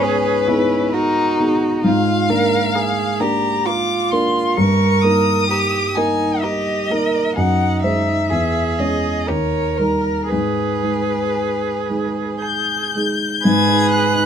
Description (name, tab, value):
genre	classical, slow romantic movement for piano quartet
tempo	54-67 BPM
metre	3/4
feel	rubato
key	G# minor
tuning	A4 = 441 Hz
part	rich violin	melody	0.0-14.3 s	A#4 to G#6	-21 LUFS	left 4 dB	none
part	clear cello	second line	0.0-14.3 s	D#4 to B4	-22 LUFS	right 6 dB	none
part	rich violin	second line	0.0-14.3 s	C#4 to A#4	-23 LUFS	left 1 dB	none
part	dark concert grand piano	accompaniment	0.0-14.3 s	D#2 to C#5	-19 LUFS	equal	none
room	little or no reverb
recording	close, detailed microphones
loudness	-16 LUFS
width	side -8 dB against mid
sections	0.0-13.5 A section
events	none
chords	0.0 G#m; 1.8 A#7/G#; 4.6 D#/G; 7.4 G#7/F#; 8.3 C#m/E; 9.3 D#7; 10.3 G#m